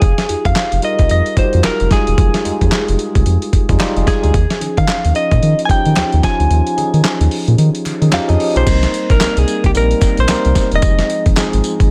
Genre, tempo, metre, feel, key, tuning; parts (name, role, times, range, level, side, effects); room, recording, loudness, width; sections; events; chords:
R&B, new jack swing; 111 BPM; 4/4; swing 60% on 16ths; A4 = 440 Hz
direct-recorded clean electric guitar; melody; 0.0-11.2 s; G4 to Ab5; -21 LUFS; equal; tape echo
tine electric piano; accompaniment; 0.0-11.9 s; F3 to F5; -22 LUFS; equal
round analog bass; bass; 0.0-11.9 s; Fb1 to Eb3; -17 LUFS; equal
dusty soul sampler-style drum kit; drums; 0.0-11.9 s; crash cymbal, handclaps, hi-hat, kick drum, snare drum, tambourine; -18 LUFS; equal
group handclap; percussion; 0.6-11.5 s; -37 LUFS; equal
digital ambience; -14 LUFS; mono
0.0-8.7 A section; 8.7-11.9 B section
kick muted 6.5-8.7
0.0 Fm9; 4.3 Eb9sus4; 8.7 Cm7; 10.8 Fm7